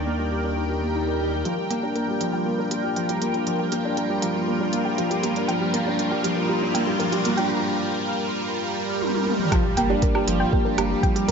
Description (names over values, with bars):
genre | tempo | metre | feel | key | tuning
piano and strings electronica | 119 BPM | 4/4 | straight | G minor | A4 = 440 Hz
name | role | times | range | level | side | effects
lush unison pad | sustained chords | 0.0-11.3 s | Eb3 to G5 | -26 LUFS | right 1 dB | chorus, phaser, sidechain pumping
felt-muted upright piano | riff | 0.0-11.3 s | F3 to Bb4 | -25 LUFS | left 1 dB | ping-pong delay
round analog bass | bass | 0.0-1.4, 9.8-11.3 s | G1 to G2 | -29 LUFS | right 1 dB | sidechain pumping
swell, riser and impact | sound effects | 0.7-11.3 s | none | -33 LUFS | right 1 dB | none
soft round pluck | arpeggios | 1.4-11.3 s | G4 to G5 | -30 LUFS | right 2 dB | chorus, sidechain pumping, ping-pong delay
organic electronic drum kit | drums | 1.5-11.3 s | hi-hat, toms, woodblock | -29 LUFS | right 1 dB | low-pass filter on hats, low-pass filter on toms, low-pass filter on perc, low-pass filter on room
electronic kick drum | drums | 9.5-11.1 s | none | -22 LUFS | equal | none
room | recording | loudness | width
moderate scoring stage reverb, RT60 1.7 s, digital ambience | nothing above 7.7 kHz | -21 LUFS | side -6 dB against mid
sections
0.0-1.5 A section; 1.5-9.5 B section; 9.5-11.3 C section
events
swell 0.7-1.5; build-up 1.5-9.5; riser 1.5-7.5; filter sweep on synth arpeggio sound 1.5-9.5; break 7.5-9.5; drum fill 9.0-9.5; drop 9.5-11.3; impact 9.5-11.3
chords
0.0 Ebmaj7; 1.5 Gm7